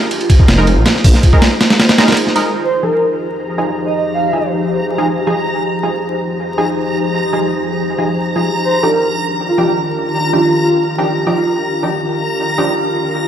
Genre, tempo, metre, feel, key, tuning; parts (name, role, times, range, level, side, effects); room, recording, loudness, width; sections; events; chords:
drum and bass, jungle; 160 BPM; 4/4; straight; F dorian; A4 = 436 Hz
ethereal airy pad; sustained chords; 0.0-13.3 s; Eb3 to C5; -19 LUFS; equal; ensemble chorus, built-in reverb
breakbeat sampler-style drum kit; drums; 0.1-2.5 s; hi-hat, kick drum, ride cymbal, snare drum; -10 LUFS; equal; studio reverb
detuned saw bass; bass; 0.5-1.1 s; F1 to Bb1; -13 LUFS; equal
orchestra-hit-like synth stab; stabs; 0.6-12.7 s; F3 to Bb4; -20 LUFS; right 1 dB; built-in reverb, dub echo
backwards swelling texture; texture; 3.3-13.3 s; Bb5; -22 LUFS; right 1 dB; built-in reverb
breathy flute-like synth lead; melody; 2.6-4.4, 8.6-11.5 s; F4 to F5; -17 LUFS; equal; lush chorus, dub echo
moderate plate reverb, RT60 2.5 s; vinyl crackle; -12 LUFS; side -9 dB against mid
0.0-2.5 A section; 2.5-13.3 B section
kick drops out 1.8-2.5; filter sweep on ambient pad 2.5-13.3
0.0 Bb7sus4; 2.5 Fm7; 8.5 Ebmaj9